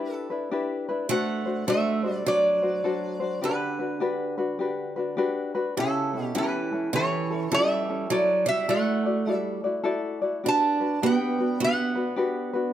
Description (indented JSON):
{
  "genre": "Hawaiian",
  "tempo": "103 BPM",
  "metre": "4/4",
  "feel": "swing 63% on 8ths",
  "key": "G major",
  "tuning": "A4 = 440 Hz",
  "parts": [
    { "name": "lap resonator guitar", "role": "melody", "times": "0.0-12.7 s", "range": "A4 to A5", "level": "-27 LUFS", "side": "right 1 dB", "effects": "none" },
    { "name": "tenor ukulele", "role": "accompaniment", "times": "0.0-12.7 s", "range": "C#4 to D5", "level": "-27 LUFS", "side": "left 4 dB", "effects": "none" },
    { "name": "picked acoustic archtop guitar", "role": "second line", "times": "1.1-12.7 s", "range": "C#3 to D4", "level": "-28 LUFS", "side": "right 5 dB", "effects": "none" }
  ],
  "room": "moderate recital hall reverb, RT60 1.7 s",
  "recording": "close, detailed microphones",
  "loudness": "-23 LUFS",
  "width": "side -11 dB against mid",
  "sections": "0.0-12.7 A section",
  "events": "none",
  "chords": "0.0 G6; 1.1 D7; 3.4 Gmaj7; 5.8 A7; 8.1 Dadd9; 10.4 Gmaj7"
}